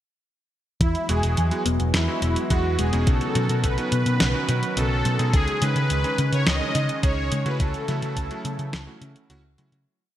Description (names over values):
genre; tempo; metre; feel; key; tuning
synthwave; 106 BPM; 4/4; straight; E major; A4 = 440 Hz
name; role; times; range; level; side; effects
soft supersaw; melody; 0.8-9.3 s; E4 to D#5; -27 LUFS; equal; phaser, digital delay
warm analog pad; sustained chords; 0.8-9.8 s; C#3 to F#4; -32 LUFS; equal; chorus, sidechain pumping
thumb-piano-like synth pluck; arpeggios; 0.8-9.8 s; C#3 to E4; -33 LUFS; left 3 dB; none
hollow-body short-scale picked electric bass; bass; 0.8-9.8 s; E1 to C#3; -24 LUFS; equal; sidechain pumping
clean 12-bit digital drum machine; drums; 0.8-9.8 s; hi-hat, snare drum; -27 LUFS; equal; gated reverb
electronic kick drum; drums; 0.8-8.3 s; none; -22 LUFS; equal; none
bright electric grand piano; stabs; 1.1-9.8 s; G#3 to G#4; -32 LUFS; right 2 dB; none
room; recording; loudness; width
moderate lush hall reverb, RT60 2.2 s; bright 1980s-style digital production; -20 LUFS; side -12 dB against mid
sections
0.8-9.9 verse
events
fade-out 6.8-9.9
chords
0.8 Eadd9; 3.1 Badd9; 5.3 C#sus2; 7.6 A6/C#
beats
| 0.81 1.37 1.94 2.51 | 3.07 3.64 4.20 4.77 | 5.34 5.90 6.47 7.03 | 7.60 8.17 8.73 9.30